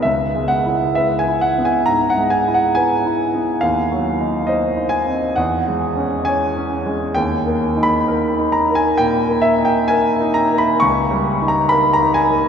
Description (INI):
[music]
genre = classical, romantic character piece for solo piano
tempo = 67 BPM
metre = 4/4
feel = rubato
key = unclear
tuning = A4 = 440 Hz
[part]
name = clear grand piano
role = solo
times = 0.0-12.5 s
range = C#2 to C#6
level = -15 LUFS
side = equal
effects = none
[sound]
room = wet cathedral reverb, RT60 6.6 s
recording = recorded in a church or concert hall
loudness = -15 LUFS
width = side -7 dB against mid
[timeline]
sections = 0.0-12.5 A section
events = none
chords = 0.1 C#m7; 3.6 Cdim/Eb; 5.4 C#m/E; 7.2 D#5; 10.8 D#7/C#